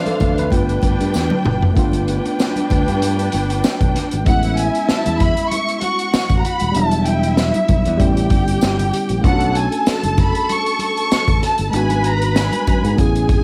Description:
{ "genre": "lush 1970s-style soul", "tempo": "96 BPM", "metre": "4/4", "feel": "swing 54% on 16ths", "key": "A major", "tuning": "A4 = 440 Hz", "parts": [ { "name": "warm studio string section", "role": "second line", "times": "0.0-13.4 s", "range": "D4 to B5", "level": "-25 LUFS", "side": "equal", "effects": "none" }, { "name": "tine electric piano", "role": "accompaniment", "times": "0.0-13.4 s", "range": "E3 to E5", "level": "-25 LUFS", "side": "equal", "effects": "none" }, { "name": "fingered electric bass", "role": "bass", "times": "0.1-13.4 s", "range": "D#1 to G#2", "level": "-23 LUFS", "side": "equal", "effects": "none" }, { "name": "vintage drum kit", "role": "drums", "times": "0.1-13.4 s", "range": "hi-hat, kick drum, snare drum, toms", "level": "-21 LUFS", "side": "equal", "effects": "none" }, { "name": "congas", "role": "percussion", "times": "0.1-13.4 s", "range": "none", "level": "-31 LUFS", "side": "equal", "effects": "none" }, { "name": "tambourine", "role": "percussion", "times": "1.1-12.5 s", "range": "none", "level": "-35 LUFS", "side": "equal", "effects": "none" }, { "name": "warm symphonic violin section", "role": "melody", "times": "4.3-13.3 s", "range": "E5 to C#6", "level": "-24 LUFS", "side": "equal", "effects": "cassette tape" } ], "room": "little or no reverb", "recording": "home recording on cassette", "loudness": "-17 LUFS", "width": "mono", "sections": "0.0-1.8 A section; 1.8-4.3 B section; 4.3-13.4 C section", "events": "tine electric piano solo 0.0-1.8; drum fill 1.1-1.8", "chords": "0.0 Dm7; 0.5 G9; 4.3 Amaj9; 6.8 Em7; 8.0 A7; 9.2 Bm7; 11.7 G#m7b5", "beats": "0.52 1.14 | 1.76 2.39 3.01 3.63 | 4.26 4.88 5.50 6.13 | 6.75 7.38 8.00 8.62 | 9.24 9.87 10.49 11.11 | 11.73 12.36 12.98" }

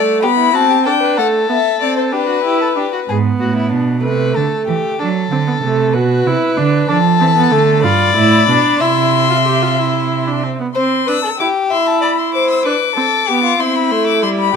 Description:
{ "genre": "classical, baroque-style fugue for string quartet", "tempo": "63 BPM (dotted quarters)", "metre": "6/8", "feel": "straight", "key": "C major", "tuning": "A4 = 439 Hz", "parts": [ { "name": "dark violin", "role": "melody", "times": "0.0-3.1, 6.9-14.6 s", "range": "B4 to E6", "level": "-16 LUFS", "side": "left 12 dB", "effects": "none" }, { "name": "rich viola", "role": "accompaniment", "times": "0.0-14.6 s", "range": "G3 to G4", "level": "-17 LUFS", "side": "right 3 dB", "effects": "none" }, { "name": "warm violin", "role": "second line", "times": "0.2-14.5 s", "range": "D4 to E5", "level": "-18 LUFS", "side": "left 4 dB", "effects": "none" }, { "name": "rich cello", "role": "bass", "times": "3.1-10.4 s", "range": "G2 to F#3", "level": "-16 LUFS", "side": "right 6 dB", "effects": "none" } ], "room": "light reverb", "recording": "close, detailed microphones", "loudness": "-12 LUFS", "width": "side -6 dB against mid", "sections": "0.0-3.1 A section; 3.1-10.8 B section; 10.8-14.6 A section", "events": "none", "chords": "0.2 G/B; 1.2 F#dim/A (rootless); 2.1 G/D; 3.1 E7/G# (rootless); 4.0 Am/C; 5.0 D7; 5.9 Bmadd11; 6.9 Dm; 7.8 G7; 8.8 C; 11.7 C/E; 12.7 Bm; 13.6 C", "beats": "0.24 | 1.18 2.13 | 3.09 4.05 | 5.00 5.95 | 6.89 7.84 | 8.81 9.78 | 10.75 11.71 | 12.66 13.60 | 14.54" }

